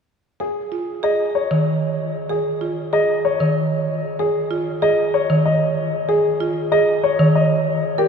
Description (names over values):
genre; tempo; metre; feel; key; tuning
classical, minimalist pattern music; 190 BPM; 6/4; straight; unclear; A4 = 440 Hz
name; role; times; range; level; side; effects
warm baby grand piano; melody; 0.4-8.1 s; G4 to Eb5; -20 LUFS; left 4 dB; none
buzzing marimba with medium mallets; arpeggios; 0.4-8.1 s; F4 to Bb4; -22 LUFS; right 5 dB; none
folk marimba with medium mallets; accompaniment; 1.5-7.4 s; Eb3; -21 LUFS; right 1 dB; none
room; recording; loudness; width
wet cathedral reverb, RT60 6.1 s; minimal, uncompressed stereo recording; -17 LUFS; side -6 dB against mid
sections
0.1-8.1 A section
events
none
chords
0.1 Ab5